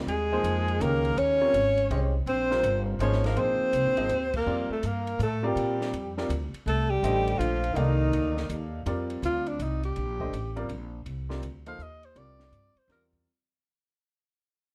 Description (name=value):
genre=modal jazz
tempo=164 BPM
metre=3/4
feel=swing 65% on 8ths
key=unclear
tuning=A4 = 441 Hz
part: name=clear grand piano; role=accompaniment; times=0.0-13.3 s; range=C3 to F5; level=-35 LUFS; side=equal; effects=none
part: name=upright bass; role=bass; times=0.0-13.2 s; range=G1 to Bb2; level=-32 LUFS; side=equal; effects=none
part: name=clear alto saxophone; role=melody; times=0.1-8.7 s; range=Eb4 to Db5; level=-30 LUFS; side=equal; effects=none
part: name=clear alto saxophone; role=second line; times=0.1-13.1 s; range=Eb3 to F5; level=-34 LUFS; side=equal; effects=none
part: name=compact cocktail drum kit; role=drums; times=0.1-13.2 s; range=crash cymbal, hi-hat, kick drum, ride cymbal, snare drum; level=-46 LUFS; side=equal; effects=none
room=light reverb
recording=dark, warm production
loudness=-27 LUFS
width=mono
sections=0.0-8.9 A section; 8.9-13.3 B section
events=band accent 4.3; fade-out 8.9-13.3; alto saxophone solo 8.9-13.3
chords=0.1 Eb13sus4; 4.5 F13sus4